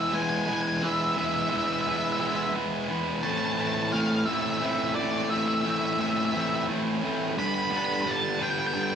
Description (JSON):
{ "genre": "rock", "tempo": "58 BPM (dotted quarters)", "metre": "6/8", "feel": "straight", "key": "A minor", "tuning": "A4 = 440 Hz", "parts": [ { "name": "octave-fuzz lead guitar", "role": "melody", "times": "0.0-9.0 s", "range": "D5 to B5", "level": "-28 LUFS", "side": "equal", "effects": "distortion" }, { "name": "thick fuzz guitar", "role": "riff", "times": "0.0-9.0 s", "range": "G2 to E4", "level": "-26 LUFS", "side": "equal", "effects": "distortion" } ], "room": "wet studio reverb, RT60 0.5 s", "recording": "band playing live in one room", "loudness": "-24 LUFS", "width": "side -8 dB against mid", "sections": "0.0-9.0 A section", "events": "none", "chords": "0.0 E; 3.2 Am; 7.4 G" }